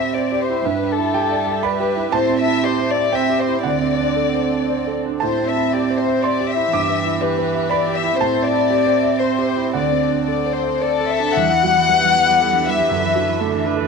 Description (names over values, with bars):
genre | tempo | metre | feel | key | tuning
neoclassical piano and strings | 103-124 BPM | 3/4 | rubato | A dorian | A4 = 440 Hz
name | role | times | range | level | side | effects
dark chamber violin section | melody | 0.0-13.7 s | A4 to F#5 | -19 LUFS | left 9 dB | none
warm cello | second line | 0.0-13.9 s | D3 to C4 | -24 LUFS | right 10 dB | none
clear concert grand piano | accompaniment | 0.0-13.9 s | D2 to D6 | -21 LUFS | right 8 dB | none
dark chamber string section | sustained chords | 0.0-13.9 s | B3 to E5 | -29 LUFS | left 3 dB | none
dark viola | accompaniment | 11.9-13.9 s | A4 to B4 | -28 LUFS | right 12 dB | none
room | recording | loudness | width
light reverb, small room ambience | 1960s-style stereo with parts hard left and right | -16 LUFS | side -5 dB against mid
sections
0.0-11.4 A section; 11.4-13.9 B section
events
none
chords
0.0 Am7; 0.7 Em7/G; 2.1 Am7; 3.6 D7; 5.2 Am7; 6.7 Em7/G; 8.2 Am7; 9.7 D7; 11.4 Em; 12.9 Dadd9/F#